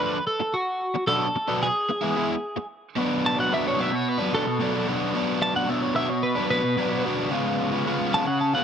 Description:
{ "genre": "rock", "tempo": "111 BPM", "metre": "4/4", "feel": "straight", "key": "unclear", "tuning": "A4 = 440 Hz", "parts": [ { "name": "twelve-string electric guitar", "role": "melody", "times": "0.0-8.6 s", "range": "F#4 to A5", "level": "-25 LUFS", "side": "right 1 dB", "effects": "none" }, { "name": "overdriven electric guitar", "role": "riff", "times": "0.0-8.6 s", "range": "B2 to F4", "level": "-24 LUFS", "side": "equal", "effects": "none" } ], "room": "light reverb", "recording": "dark, warm production", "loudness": "-22 LUFS", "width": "side -8 dB against mid", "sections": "0.0-3.0 A section; 3.0-8.6 B section", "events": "clean electric guitar solo 3.0-8.6", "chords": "0.0 Dm; 0.8 Bm; 1.9 E; 3.0 Bm7; 7.3 C#7(no3)", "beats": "0.26 | 0.80 1.34 1.89 2.43 | 2.97 3.51 4.06 4.60 | 5.14 5.68 6.23 6.77 | 7.31 7.85 8.40" }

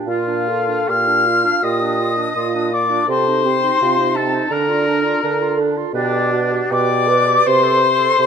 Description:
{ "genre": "classical, slow romantic movement for wind quintet", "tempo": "71-87 BPM", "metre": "4/4", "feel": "rubato", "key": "unclear", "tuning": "A4 = 440 Hz", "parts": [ { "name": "bright clarinet", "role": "accompaniment", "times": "0.0-8.3 s", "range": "C4 to C5", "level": "-26 LUFS", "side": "right 12 dB", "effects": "none" }, { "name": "warm French horn", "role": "accompaniment", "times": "0.0-8.3 s", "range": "D4 to B4", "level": "-23 LUFS", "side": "right 2 dB", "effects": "none" }, { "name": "silver concert flute", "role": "melody", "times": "0.1-8.3 s", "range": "D5 to F6", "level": "-18 LUFS", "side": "left 7 dB", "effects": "none" }, { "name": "warm oboe", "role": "second line", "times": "0.1-8.3 s", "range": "D4 to F5", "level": "-21 LUFS", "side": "left 1 dB", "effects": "none" }, { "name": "dark bassoon", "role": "bass", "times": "0.1-8.3 s", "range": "Bb2 to D3", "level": "-21 LUFS", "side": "right 3 dB", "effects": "none" } ], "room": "moderate recital hall reverb, RT60 1.6 s", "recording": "none", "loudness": "-14 LUFS", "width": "side -7 dB against mid", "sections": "0.0-8.3 A section", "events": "none", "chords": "0.1 Bb; 3.1 Cm6; 4.5 Bb/D; 5.9 G/B; 7.5 Am/C", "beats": "| 0.08 0.89 1.63 2.36 | 3.09 3.81 4.51 5.24 | 5.94 6.71 7.46 8.18" }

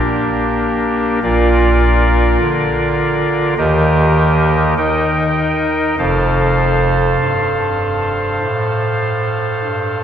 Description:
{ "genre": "classical, chorale-style piece for pipe organ", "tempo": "50 BPM", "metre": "4/4", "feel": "straight", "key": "unclear", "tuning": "A4 = 440 Hz", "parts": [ { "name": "pipe organ, soft reed", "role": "solo", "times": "0.0-10.0 s", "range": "F1 to G5", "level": "-13 LUFS", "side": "equal", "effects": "none" } ], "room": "wet cathedral reverb, RT60 4.5 s", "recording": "heard from further back in the room", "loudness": "-13 LUFS", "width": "side -9 dB against mid", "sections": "0.0-10.0 A section", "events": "none", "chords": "0.0 Gm/Bb; 1.2 Bb; 3.6 Eb; 6.0 F", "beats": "0.04 | 1.24 2.41 3.58 4.78 | 5.99 7.21 8.43 9.65" }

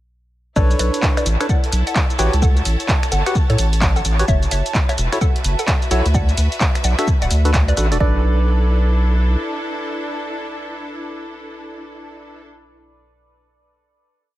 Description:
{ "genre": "UK garage, two-step garage", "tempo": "129 BPM", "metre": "4/4", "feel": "swing 62% on 16ths", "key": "B minor", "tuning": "A4 = 440 Hz", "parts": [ { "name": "hollow square pluck", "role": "melody", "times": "0.6-12.4 s", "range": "A4 to A5", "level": "-28 LUFS", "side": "equal", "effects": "chorus, dub echo" }, { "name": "airy breathy pad", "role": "sustained chords", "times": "1.0-8.0 s", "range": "A5", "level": "-33 LUFS", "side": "right 6 dB", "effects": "chorus, phaser, sidechain pumping" }, { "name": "percussive organ stab", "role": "stabs", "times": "0.6-12.4 s", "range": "D4 to F#5", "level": "-25 LUFS", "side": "equal", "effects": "chorus, dub echo" }, { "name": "saturated sub bass", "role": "bass", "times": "0.6-9.4 s", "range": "D1 to A2", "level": "-16 LUFS", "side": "equal", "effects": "sidechain pumping" }, { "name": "electronic kick drum", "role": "drums", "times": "0.6-8.1 s", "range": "none", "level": "-19 LUFS", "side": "equal", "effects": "none" }, { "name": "punchy analog drum machine", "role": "drums", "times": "0.6-8.0 s", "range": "finger snaps, handclaps, hi-hat, shaker", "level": "-23 LUFS", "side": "equal", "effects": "analog delay" }, { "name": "bright studio string section", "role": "texture", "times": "0.6-12.5 s", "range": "D4 to E5", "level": "-30 LUFS", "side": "left 1 dB", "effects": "sidechain pumping" } ], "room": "little or no reverb", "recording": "echo-heavy mix, faint mains hum", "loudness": "-15 LUFS", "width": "side -15 dB against mid", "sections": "0.6-8.0 drop; 8.0-11.7 final chord", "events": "drop 0.6-8.0", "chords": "0.6 Bm9; 2.2 A13; 4.3 F#m7; 6.1 D6; 8.0 Bm7", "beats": "| 0.56 1.03 1.49 1.96 | 2.42 2.89 3.35 3.82 | 4.28 4.75 5.21 5.68 | 6.14 6.61 7.07 7.54 | 8.00 8.47 8.93 9.40 | 9.86 10.33 10.79 11.26" }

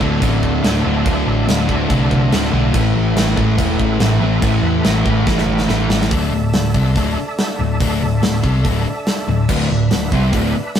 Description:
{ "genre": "hard rock", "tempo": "142 BPM", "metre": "4/4", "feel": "straight", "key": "unclear", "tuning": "A4 = 437 Hz", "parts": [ { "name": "overdriven tonewheel organ", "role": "sustained chords", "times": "0.0-10.8 s", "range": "A3 to E5", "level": "-26 LUFS", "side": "right 2 dB", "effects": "slow rotary speaker, chorus vibrato" }, { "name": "overdriven semi-hollow guitar", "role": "riff", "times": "0.0-6.1, 9.5-10.5 s", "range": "D2 to C4", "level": "-21 LUFS", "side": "right 6 dB", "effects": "none" }, { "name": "sludgy distorted guitar", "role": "riff", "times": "0.0-10.5 s", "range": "D2 to C4", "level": "-19 LUFS", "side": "left 4 dB", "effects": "overdrive" }, { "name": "picked electric bass", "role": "bass", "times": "0.0-10.5 s", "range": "D1 to E2", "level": "-19 LUFS", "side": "equal", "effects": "none" }, { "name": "gated 80s drum kit", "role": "drums", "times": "0.0-10.8 s", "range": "crash cymbal, hi-hat, kick drum, snare drum", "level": "-20 LUFS", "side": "equal", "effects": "none" } ], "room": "light reverb", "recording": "rough rehearsal-room recording", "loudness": "-14 LUFS", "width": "side -9 dB against mid", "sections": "0.0-6.1 A section; 6.1-10.8 B section", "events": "drum fill 5.3-6.1", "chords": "0.0 D5; 2.7 A5; 6.1 D5", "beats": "0.22 0.64 | 1.06 1.48 1.90 2.32 | 2.74 3.16 3.58 4.00 | 4.43 4.85 5.27 5.69 | 6.11 6.53 6.96 7.38 | 7.80 8.22 8.64 9.06 | 9.48 9.91 10.33 10.75" }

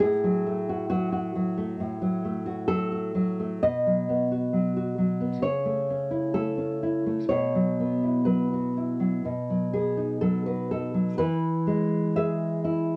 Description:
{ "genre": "romantic piece for solo classical guitar", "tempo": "60-68 BPM", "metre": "4/4", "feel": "rubato", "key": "E major", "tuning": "A4 = 439 Hz", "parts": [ { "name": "nylon-string guitar", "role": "solo", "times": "0.0-13.0 s", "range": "A2 to E5", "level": "-26 LUFS", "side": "equal", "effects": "none" } ], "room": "wet studio reverb, RT60 0.6 s", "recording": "worn, warbling old tape, cassette tape, warbly pitch drift", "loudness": "-27 LUFS", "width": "mono", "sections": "0.0-11.2 A section; 11.2-13.0 B section", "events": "none", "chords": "0.0 F#m/A; 3.6 B; 5.4 A/C#; 7.3 Bsus4; 9.2 B; 11.2 E", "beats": "| 0.01 0.90 1.79 2.68 | 3.62 4.52 5.42 6.33 | 7.28 8.26 9.24 10.21 | 11.18 12.16" }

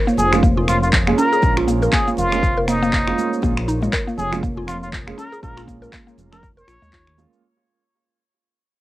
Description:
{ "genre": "afro house", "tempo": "120 BPM", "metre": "4/4", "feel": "swing 58% on 16ths", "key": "unclear", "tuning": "A4 = 441 Hz", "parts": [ { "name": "dark analog pad", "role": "sustained chords", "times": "0.0-7.4 s", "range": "Bb3 to Db5", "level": "-29 LUFS", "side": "equal", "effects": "chorus, sidechain pumping, cassette tape" }, { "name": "mallet-like synth pluck", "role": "arpeggios", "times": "0.0-7.1 s", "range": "Ab3 to Bb4", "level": "-23 LUFS", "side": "equal", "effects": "chorus, sidechain pumping, cassette tape" }, { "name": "electronic cabasa, finger snaps and handclaps", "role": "drums", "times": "0.1-7.4 s", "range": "none", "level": "-24 LUFS", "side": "equal", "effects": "studio ambience, cassette tape" }, { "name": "trumpet with plunger mute", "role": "melody", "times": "0.2-7.3 s", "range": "Eb4 to Db5", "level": "-22 LUFS", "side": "equal", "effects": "cassette tape, tape echo" }, { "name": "dark detuned saw bass", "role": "bass", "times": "0.2-7.3 s", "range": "F1 to Eb2", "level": "-23 LUFS", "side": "equal", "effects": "tube saturation, sidechain pumping" }, { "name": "congas", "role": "percussion", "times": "0.2-7.3 s", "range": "none", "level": "-32 LUFS", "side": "right 6 dB", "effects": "none" }, { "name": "felt-muted upright piano", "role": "stabs", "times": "0.3-7.4 s", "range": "Ab3 to Bb4", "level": "-25 LUFS", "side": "right 6 dB", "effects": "sidechain pumping, cassette tape, tape echo" }, { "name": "electronic kick drum", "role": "drums", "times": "0.4-7.0 s", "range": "none", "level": "-20 LUFS", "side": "equal", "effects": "studio ambience, cassette tape" } ], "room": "light reverb", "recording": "home recording on cassette", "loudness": "-16 LUFS", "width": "side -16 dB against mid", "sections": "0.0-7.4 A section", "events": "drop 0.0-7.4; fade-out 0.0-7.4", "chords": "0.0 Bbm7", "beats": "0.43 0.93 | 1.43 1.93 2.43 2.93 | 3.43 3.93 4.43 4.93 | 5.43 5.93 6.43 6.93" }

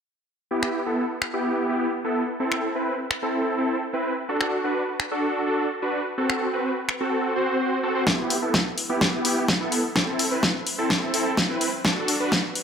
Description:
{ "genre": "EDM, festival progressive house", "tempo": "127 BPM", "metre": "4/4", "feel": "straight", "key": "E minor", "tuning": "A4 = 442 Hz", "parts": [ { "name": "supersaw chords", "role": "riff", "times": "0.5-12.4 s", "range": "B3 to C5", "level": "-24 LUFS", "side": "equal", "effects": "sidechain pumping, low-pass filter, tape echo" }, { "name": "big-room dance drum kit", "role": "drums", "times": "0.6-12.6 s", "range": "finger snaps, hi-hat, snare drum", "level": "-24 LUFS", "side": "left 1 dB", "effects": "none" }, { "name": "electronic kick drum", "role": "drums", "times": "8.1-12.4 s", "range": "none", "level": "-29 LUFS", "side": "equal", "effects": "high-pass filter on kick, high-pass filter on room" } ], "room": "moderate lush hall reverb, RT60 2.1 s", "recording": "none", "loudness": "-22 LUFS", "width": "side -7 dB against mid", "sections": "0.5-8.1 A section; 8.1-12.6 B section", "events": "build-up 8.1-12.6; drum fill 8.1-12.6; filter sweep on supersaw synth 8.1-12.6", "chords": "0.5 Em; 2.4 Am; 4.3 D; 6.2 F#dim; 8.1 Em; 10.0 Am; 11.8 D", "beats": "| 0.51 0.98 1.45 1.93 | 2.40 2.87 3.34 3.81 | 4.29 4.76 5.23 5.71 | 6.18 6.65 7.12 7.59 | 8.07 8.54 9.01 9.48 | 9.96 10.43 10.90 11.37 | 11.85 12.32" }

